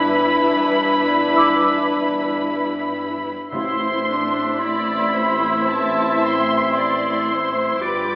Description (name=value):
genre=cinematic, emotional film score for orchestra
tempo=55 BPM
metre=4/4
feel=rubato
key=A minor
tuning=A4 = 441 Hz
part: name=muted studio violin section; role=melody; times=0.0-8.2 s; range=A5 to D6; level=-22 LUFS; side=equal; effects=none
part: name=muted studio violin section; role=second line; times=0.0-8.2 s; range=B4 to E5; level=-26 LUFS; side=left 1 dB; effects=none
part: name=muted studio viola section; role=accompaniment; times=0.0-8.2 s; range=D4 to G4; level=-25 LUFS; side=equal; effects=none
part: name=warm French horn section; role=sustained chords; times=0.0-8.2 s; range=E3 to D4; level=-24 LUFS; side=left 1 dB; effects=none
part: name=muted studio double bass section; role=bass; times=0.0-8.2 s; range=G1 to A1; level=-34 LUFS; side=equal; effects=none
part: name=muted symphonic cello section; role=bass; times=0.0-8.2 s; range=G2 to A2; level=-31 LUFS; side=equal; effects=none
part: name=clear oboe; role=second line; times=1.4-8.2 s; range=D5 to E5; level=-23 LUFS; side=equal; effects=none
part: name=hollow small flute group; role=second line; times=1.4-8.2 s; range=B5 to D6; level=-25 LUFS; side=equal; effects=none
part: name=warm clarinet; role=second line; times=1.4-8.2 s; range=E4 to F4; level=-29 LUFS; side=equal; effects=none
part: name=timpani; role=percussion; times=3.5-5.1 s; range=A2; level=-30 LUFS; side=left 1 dB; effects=none
room=wet scoring stage reverb, RT60 1.8 s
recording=AM radio sound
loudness=-16 LUFS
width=side -21 dB against mid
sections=0.0-8.2 A section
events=none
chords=0.0 Em7/G; 3.5 Am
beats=0.27 1.36 2.44 | 3.53 4.61 5.69 6.76 | 7.81